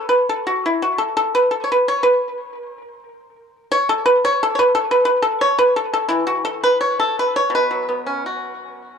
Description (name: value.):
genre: chinese traditional, Chinese solo plucked strings.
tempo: 80-92 BPM.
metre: 4/4.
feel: rubato.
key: unclear.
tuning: A4 = 441 Hz.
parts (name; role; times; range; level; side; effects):
pipa; solo; 0.0-9.0 s; B2 to C#5; -16 LUFS; equal; tape echo.
room: light reverb.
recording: dry, close 1970s-style studio recording.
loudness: -16 LUFS.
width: side -6 dB against mid.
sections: 0.0-9.0 A section.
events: none.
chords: none.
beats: | 0.67 1.36 2.03 2.69 | 3.38 4.08 4.76 5.43 | 6.11 6.81 7.52 8.25.